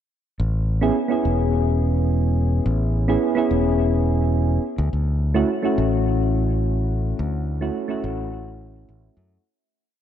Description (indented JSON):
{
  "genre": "sunset chillout",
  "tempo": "106 BPM",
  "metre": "4/4",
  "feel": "straight",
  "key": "A major",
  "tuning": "A4 = 436 Hz",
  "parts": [
    { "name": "modern bright fingered electric bass", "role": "bass", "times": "0.4-9.4 s", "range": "E1 to F#2", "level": "-21 LUFS", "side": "left 1 dB", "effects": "none" },
    { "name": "soft electric-piano-like synth keys", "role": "accompaniment", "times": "0.8-9.4 s", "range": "A3 to G#4", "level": "-22 LUFS", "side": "moving between left 5 dB and right 5 dB", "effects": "chorus, auto-pan, ping-pong delay" }
  ],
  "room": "moderate lush hall reverb, RT60 2.5 s",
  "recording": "dark, warm production",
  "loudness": "-19 LUFS",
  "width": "side -10 dB against mid",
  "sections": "0.4-9.5 groove",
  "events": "fade-out 6.4-9.5",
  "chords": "0.4 Amaj7; 4.6 Dmaj7"
}